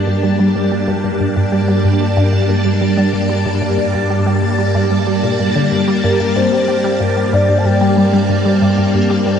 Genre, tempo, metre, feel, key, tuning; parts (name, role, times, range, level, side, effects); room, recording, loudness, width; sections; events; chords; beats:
ambient, sequencer-driven space music; 93 BPM; 4/4; straight; G minor; A4 = 441 Hz
phased string machine; sustained chords; 0.0-9.4 s; G3 to A5; -16 LUFS; equal; ensemble chorus, phaser
analog drone; bass; 0.0-9.4 s; G2; -19 LUFS; equal; chorus
resonant blip pluck; riff; 0.1-9.3 s; G2 to G3; -17 LUFS; equal; phaser, wide subtle chorus, analog delay
soft octave-layered synth lead; melody; 6.0-8.3 s; Bb4 to A5; -18 LUFS; left 1 dB; chorus, tremolo, analog delay
wet huge ambient reverb, RT60 7.4 s; dark, warm production; -12 LUFS; side -8 dB against mid
0.0-9.4 A section
0.0 Gmadd9
0.23 | 0.88 1.52 2.17 2.81 | 3.46 4.10 4.75 5.39 | 6.04 6.68 7.33 7.97 | 8.62 9.27